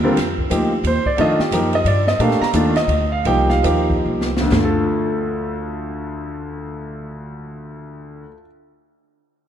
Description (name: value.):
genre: modal jazz.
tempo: 124-178 BPM.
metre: 3/4.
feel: swing 62% on 8ths.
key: D phrygian.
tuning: A4 = 440 Hz.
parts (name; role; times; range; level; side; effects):
clear concert grand piano; accompaniment; 0.0-8.5 s; D2 to Bb5; -19 LUFS; equal; none.
upright bass; bass; 0.0-8.3 s; C2 to Bb2; -23 LUFS; equal; none.
open jazz drum kit; drums; 0.2-4.7 s; hi-hat, kick drum, ride cymbal, snare drum, toms; -25 LUFS; right 1 dB; none.
room: wet plate reverb, RT60 2.1 s.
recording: dreamy mix soaked in reverb, lossy compression artefacts.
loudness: -16 LUFS.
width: side -9 dB against mid.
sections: 0.2-4.5 A section; 4.5-7.4 B section.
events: slowing down 2.2-4.5; drum fill 4.1-4.5.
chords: 0.2 F9sus4; 4.5 Dm.